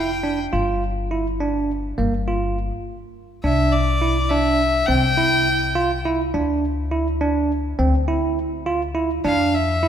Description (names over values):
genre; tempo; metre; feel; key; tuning
contemporary instrumental, chamber music in an uneven meter; 207 BPM (eighths); 5/8; straight; unclear; A4 = 439 Hz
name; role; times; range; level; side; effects
bright violin; melody; 0.0-0.4, 3.4-6.0, 9.3-9.9 s; D5 to G5; -21 LUFS; left 2 dB; none
bell-like tine electric piano; arpeggios; 0.0-9.9 s; Bb3 to F4; -22 LUFS; right 3 dB; none
upright bass; bass; 0.0-9.9 s; F1 to F2; -24 LUFS; left 2 dB; none
room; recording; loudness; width
wet concert hall reverb, RT60 2.3 s; minimal, uncompressed stereo recording; -18 LUFS; side -9 dB against mid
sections
0.0-3.4 A section; 3.4-9.9 B section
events
stop 2.7-3.4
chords
0.0 F5; 0.5 G5; 2.0 G7(no3); 3.4 Cadd9; 6.3 N.C.; 9.2 Fmaj7(no3)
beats
0.24 | 0.54 0.82 1.12 1.41 1.70 | 1.99 2.28 2.57 2.86 3.15 | 3.44 3.73 4.02 4.31 4.60 | 4.89 5.18 5.47 5.76 6.05 | 6.34 6.63 6.92 7.21 7.50 | 7.79 8.09 8.38 8.67 8.96 | 9.25 9.54 9.83